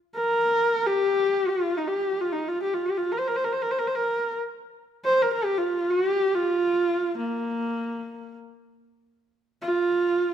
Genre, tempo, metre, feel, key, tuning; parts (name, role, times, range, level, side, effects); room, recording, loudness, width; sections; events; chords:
mongolian traditional, Mongolian folk; free time; Bb zhi mode; A4 = 440 Hz
rich horsehead fiddle; solo; 0.2-10.3 s; Bb3 to C5; -23 LUFS; equal
moderate recital hall reverb, RT60 1.6 s; -23 LUFS; side -9 dB against mid
0.0-9.3 A section; 9.3-10.3 A section